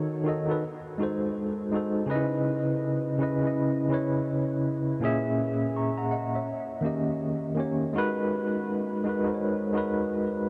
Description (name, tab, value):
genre	hip hop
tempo	82 BPM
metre	4/4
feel	swing 62% on 16ths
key	G# minor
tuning	A4 = 436 Hz
part	tine electric piano	solo	0.0-10.5 s	A#2 to C#6	-28 LUFS	equal	medium tremolo, tape echo
room	wet huge ambient reverb, RT60 8.5 s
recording	dreamy mix soaked in reverb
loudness	-28 LUFS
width	mono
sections	0.0-7.9 A section; 7.9-10.5 A section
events	none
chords	0.0 D#m7b5; 0.6 G#7b9; 2.1 C#m9; 5.0 A#m7b5; 6.5 D#7; 7.9 G#m9